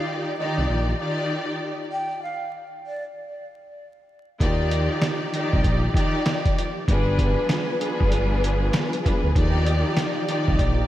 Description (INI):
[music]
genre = hip hop, boom-bap hip-hop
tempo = 97 BPM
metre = 4/4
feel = swing 62% on 16ths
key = Eb major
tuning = A4 = 440 Hz
[part]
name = breathy hollow jazz flute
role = melody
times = 0.0-3.0 s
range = D5 to G5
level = -32 LUFS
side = right 1 dB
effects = high-pass filter, low-pass filter, tape echo
[part]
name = warm symphonic string section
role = accompaniment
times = 0.0-10.9 s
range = Eb3 to D5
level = -25 LUFS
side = left 1 dB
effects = high-pass filter, low-pass filter
[part]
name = smooth synth bass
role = bass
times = 0.6-10.8 s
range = G1 to Eb2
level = -23 LUFS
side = equal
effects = none
[part]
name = lush unison pad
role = sustained chords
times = 4.4-10.9 s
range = F3 to D5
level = -32 LUFS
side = right 1 dB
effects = chorus, high-pass filter, low-pass filter
[part]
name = dusty soul sampler-style drum kit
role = drums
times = 4.4-10.8 s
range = hi-hat, kick drum, snare drum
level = -24 LUFS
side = equal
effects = none
[sound]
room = moderate lush hall reverb, RT60 3.2 s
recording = dreamy mix soaked in reverb, vinyl crackle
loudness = -20 LUFS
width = side -13 dB against mid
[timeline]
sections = 0.0-4.4 A section; 4.4-10.9 B section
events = stop 1.9-4.4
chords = 0.0 Ebmaj9; 1.9 N.C.; 4.4 Ebmaj9; 6.9 G7b9; 9.4 Ebmaj9